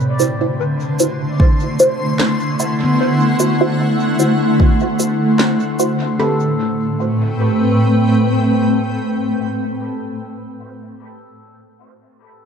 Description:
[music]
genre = ambient dub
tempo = 75 BPM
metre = 4/4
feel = swing 53% on 16ths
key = A dorian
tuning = A4 = 440 Hz
[part]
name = granular cloud pad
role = sustained chords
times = 0.0-10.2 s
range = A2 to C6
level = -16 LUFS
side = equal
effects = built-in reverb
[part]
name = filtered dub chord stab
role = stabs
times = 0.2-10.7 s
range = C4 to C5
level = -20 LUFS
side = right 1 dB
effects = phaser, analog chorus, dub echo
[part]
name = electronic cabasa and snare drum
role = drums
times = 0.2-6.0 s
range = none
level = -21 LUFS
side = equal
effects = dub echo
[part]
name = electronic kick drum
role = drums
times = 1.4-4.8 s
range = none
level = -12 LUFS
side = equal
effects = none
[part]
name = handpan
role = arpeggios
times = 2.8-10.7 s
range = B3 to A4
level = -27 LUFS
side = left 2 dB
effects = low-pass filter, dub echo
[sound]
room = moderate spring reverb, RT60 1.9 s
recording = none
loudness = -14 LUFS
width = side -7 dB against mid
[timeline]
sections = 0.0-6.2 A section; 6.2-9.4 B section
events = filter sweep on synth stab 0.0-6.2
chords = 0.0 D9; 6.2 Am9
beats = 0.59 1.40 2.19 | 3.00 3.79 4.59 5.39 | 6.20 7.00 7.79 8.60

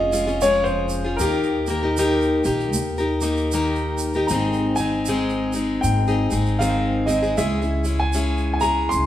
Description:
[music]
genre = acoustic folk duo or small band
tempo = 78 BPM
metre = 4/4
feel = swing 61% on 8ths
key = Ab major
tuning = A4 = 440 Hz
[part]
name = clear upright piano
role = melody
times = 0.0-9.1 s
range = Bb4 to C6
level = -24 LUFS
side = equal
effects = none
[part]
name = picked plugged-in steel-string acoustic guitar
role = accompaniment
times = 0.0-9.1 s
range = Ab2 to Bb4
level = -22 LUFS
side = left 2 dB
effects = none
[part]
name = upright bass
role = bass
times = 0.0-9.1 s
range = F1 to Eb2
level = -25 LUFS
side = equal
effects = none
[part]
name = tube shaker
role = percussion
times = 0.1-9.1 s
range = none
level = -32 LUFS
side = right 5 dB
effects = none
[sound]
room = wet large studio reverb, RT60 1.4 s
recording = band playing live in one room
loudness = -19 LUFS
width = side -12 dB against mid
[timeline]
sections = 0.0-4.3 A section; 4.3-9.1 B section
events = none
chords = 0.0 Db/F; 1.2 Eb; 4.3 Ab; 7.4 Dbm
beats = 0.42 | 1.19 1.97 2.74 3.51 | 4.28 5.05 5.83 6.60 | 7.38 8.15 8.92

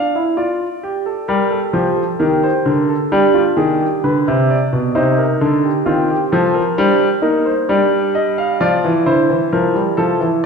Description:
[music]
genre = classical, baroque-style 3-part fugue for grand piano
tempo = 66 BPM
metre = 4/4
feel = straight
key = G minor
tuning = A4 = 441 Hz
[part]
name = warm concert grand piano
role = solo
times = 0.0-10.4 s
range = B2 to F5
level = -13 LUFS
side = equal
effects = none
[sound]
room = wet recital hall reverb, RT60 1.6 s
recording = heard from further back in the room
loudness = -13 LUFS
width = side -5 dB against mid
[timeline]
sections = 0.0-10.5 A section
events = none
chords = 0.0 Dm; 1.3 Gm; 3.1 G7; 5.0 Cm; 6.8 Gm; 8.6 Dm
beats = 0.39 | 1.29 2.21 3.12 4.04 | 4.95 5.86 6.78 7.70 | 8.61 9.53

